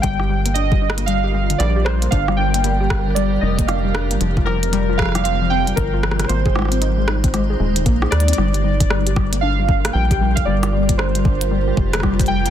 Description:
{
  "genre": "IDM",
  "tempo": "115 BPM",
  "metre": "4/4",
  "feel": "swing 62% on 16ths",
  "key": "G phrygian",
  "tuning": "A4 = 439 Hz",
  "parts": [
    { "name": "warbly lo-fi synth keys", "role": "melody", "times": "0.0-12.5 s", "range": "Bb4 to G5", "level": "-23 LUFS", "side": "right 3 dB", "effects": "chorus, vintage 12-bit sampler grit, tape echo" },
    { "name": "granular cloud pad", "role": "sustained chords", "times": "1.0-12.5 s", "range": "G3 to C5", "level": "-26 LUFS", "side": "right 1 dB", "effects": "built-in reverb" },
    { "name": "warbly dusty pluck", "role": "arpeggios", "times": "0.0-12.5 s", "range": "C3 to Ab4", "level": "-24 LUFS", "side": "left 6 dB", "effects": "chorus, ping-pong delay" },
    { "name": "rubbery square bass", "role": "bass", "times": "0.0-12.5 s", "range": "Eb1 to Eb2", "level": "-20 LUFS", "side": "equal", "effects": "none" },
    { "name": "electronic kick drum", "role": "drums", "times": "0.0-12.3 s", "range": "none", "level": "-20 LUFS", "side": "equal", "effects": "none" },
    { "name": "glitchy drum kit", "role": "drums", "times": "0.0-12.5 s", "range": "hi-hat, rim click", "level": "-26 LUFS", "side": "right 1 dB", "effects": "soft clipping on snare, ping-pong delay" }
  ],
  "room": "little or no reverb",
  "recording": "dense, heavily limited modern master",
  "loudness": "-15 LUFS",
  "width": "side -10 dB against mid",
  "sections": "0.0-8.4 A section; 8.4-12.5 B section",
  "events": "drum fill 8.1",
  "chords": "0.0 Gm7; 4.2 Fsus2; 6.3 Ab; 8.4 Gm7",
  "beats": "| 0.03 0.56 1.08 1.60 | 2.12 2.64 3.16 3.69 | 4.21 4.73 5.25 5.77 | 6.29 6.82 7.34 7.86 | 8.38 8.90 9.43 9.95 | 10.47 10.99 11.51 12.03"
}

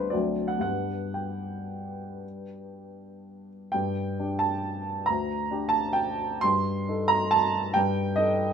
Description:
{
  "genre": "classical, piano waltz",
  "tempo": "111-144 BPM",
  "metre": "3/4",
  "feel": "rubato",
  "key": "G major, G minor from 3.7 s",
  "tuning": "A4 = 440 Hz",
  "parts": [
    { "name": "warm upright piano", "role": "solo", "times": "0.0-8.5 s", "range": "D2 to C6", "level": "-25 LUFS", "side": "right 1 dB", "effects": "none" }
  ],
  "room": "light reverb",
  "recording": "minimal, uncompressed stereo recording",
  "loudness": "-24 LUFS",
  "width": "side -7 dB against mid",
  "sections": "0.0-3.7 A section; 3.7-8.5 B section",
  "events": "none",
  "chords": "0.1 D7; 0.6 G; 3.7 Gm; 6.4 Am7b5/G",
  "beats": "0.13 | 0.63 1.17 1.70 | 2.23 2.74 3.25 | 3.73 4.18 4.63 | 5.07 5.50 5.95 | 6.44 6.88 7.33 | 7.75 8.18"
}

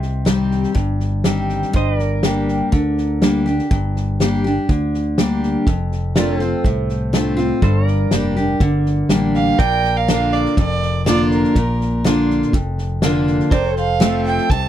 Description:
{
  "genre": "honky-tonk and classic country",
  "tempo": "122 BPM",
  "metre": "4/4",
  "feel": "straight",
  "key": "unclear",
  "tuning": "A4 = 440 Hz",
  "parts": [
    { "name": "picked steel-string acoustic guitar", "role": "accompaniment", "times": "0.0-14.7 s", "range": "F2 to G4", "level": "-18 LUFS", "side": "left 1 dB", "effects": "none" },
    { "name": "pedal steel guitar", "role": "sustained chords", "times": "0.0-14.7 s", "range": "A4 to Eb5", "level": "-27 LUFS", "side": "right 4 dB", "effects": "wide subtle chorus" },
    { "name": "fingered electric bass", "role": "bass", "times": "0.0-14.7 s", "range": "F1 to D2", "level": "-22 LUFS", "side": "equal", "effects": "none" },
    { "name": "natural country drum kit", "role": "drums", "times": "0.0-14.6 s", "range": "hi-hat, kick drum, snare drum", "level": "-19 LUFS", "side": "equal", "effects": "none" },
    { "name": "clear fiddle", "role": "second line", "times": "9.3-14.7 s", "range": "Bb4 to A5", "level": "-20 LUFS", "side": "right 5 dB", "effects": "none" }
  ],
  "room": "light reverb",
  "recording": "dry, close 1970s-style studio recording",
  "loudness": "-15 LUFS",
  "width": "side -11 dB against mid",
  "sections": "0.0-9.6 A section; 9.6-14.7 B section",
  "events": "fiddle solo 9.6-14.7",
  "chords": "0.0 Cm; 1.7 Gm; 5.7 F6; 7.6 Gm; 9.6 Bb; 13.5 F",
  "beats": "0.27 0.76 1.25 | 1.74 2.23 2.73 3.22 | 3.71 4.20 4.69 5.18 | 5.67 6.16 6.65 7.14 | 7.63 8.12 8.61 9.10 | 9.59 10.09 10.58 11.07 | 11.56 12.05 12.54 13.03 | 13.52 14.01 14.50"
}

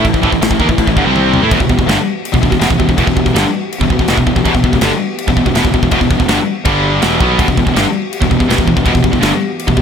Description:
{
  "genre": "heavy metal",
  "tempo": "163 BPM",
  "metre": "4/4",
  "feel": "straight",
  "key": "E minor",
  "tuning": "A4 = 440 Hz",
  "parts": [
    { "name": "hollow soft pad", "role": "sustained chords", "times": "0.0-9.8 s", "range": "C3 to A5", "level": "-25 LUFS", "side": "equal", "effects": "ensemble chorus" },
    { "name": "distorted electric guitar", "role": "riff", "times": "0.0-9.8 s", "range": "E2 to E4", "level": "-19 LUFS", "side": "equal", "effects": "distortion" },
    { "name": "heavy high-gain guitar", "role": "riff", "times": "0.0-9.8 s", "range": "E2 to E4", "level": "-16 LUFS", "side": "left 10 dB", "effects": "distortion" },
    { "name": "high-gain distorted guitar", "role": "riff", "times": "0.0-9.8 s", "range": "E2 to E4", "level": "-17 LUFS", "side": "right 11 dB", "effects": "distortion" },
    { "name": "fuzz fingered electric bass", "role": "bass", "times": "0.0-9.8 s", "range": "E1 to A2", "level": "-19 LUFS", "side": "equal", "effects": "overdrive" },
    { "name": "modern studio drum kit", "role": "drums", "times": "0.0-9.8 s", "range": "china cymbal, crash cymbal, kick drum, snare drum, toms", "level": "-16 LUFS", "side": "equal", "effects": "none" }
  ],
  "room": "small room ambience",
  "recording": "none",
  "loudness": "-10 LUFS",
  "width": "side -7 dB against mid",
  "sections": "0.0-1.5 A section; 1.5-9.8 B section",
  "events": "drum fill 1.1-1.5",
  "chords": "0.0 A5; 1.1 C5; 1.4 A5; 1.5 Em; 6.7 G5; 7.0 Em",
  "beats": "| 0.05 0.41 0.78 1.15 | 1.52 1.88 2.25 2.62 | 2.98 3.35 3.72 4.09 | 4.45 4.82 5.19 5.55 | 5.92 6.29 6.66 7.02 | 7.39 7.76 8.13 8.49 | 8.86 9.23 9.60"
}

